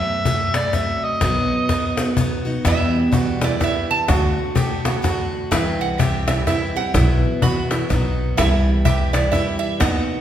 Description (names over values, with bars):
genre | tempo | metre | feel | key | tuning
acoustic folk duo or small band | 126 BPM | 3/4 | swing 60% on 8ths | E minor | A4 = 442 Hz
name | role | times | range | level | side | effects
overdriven harmonica | melody | 0.0-2.2 s | D5 to E5 | -22 LUFS | right 1 dB | none
picked steel-string acoustic guitar | accompaniment | 0.0-10.2 s | E2 to G4 | -24 LUFS | equal | none
upright bass | bass | 0.0-10.1 s | B1 to F#2 | -22 LUFS | equal | none
cajon | percussion | 0.1-10.1 s | none | -22 LUFS | left 2 dB | none
lap resonator guitar | second line | 2.7-10.2 s | D5 to B5 | -24 LUFS | right 5 dB | none
bluegrass banjo | arpeggios | 2.7-10.2 s | D#4 to G4 | -25 LUFS | right 4 dB | none
room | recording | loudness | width
wet recital hall reverb, RT60 1.4 s | recorded in a church or concert hall | -17 LUFS | side -10 dB against mid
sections
0.0-2.6 A section; 2.6-10.2 A section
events
resonator guitar played with a steel bar solo 2.6-10.2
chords
0.0 F#dim; 1.2 B; 2.6 Em; 4.1 D; 5.5 C; 6.9 Bsus4; 7.9 B; 8.4 C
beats
0.26 0.74 | 1.22 1.69 2.17 | 2.65 3.13 3.60 | 4.08 4.56 5.04 | 5.51 5.99 6.47 | 6.95 7.42 7.90 | 8.38 8.85 9.33 | 9.81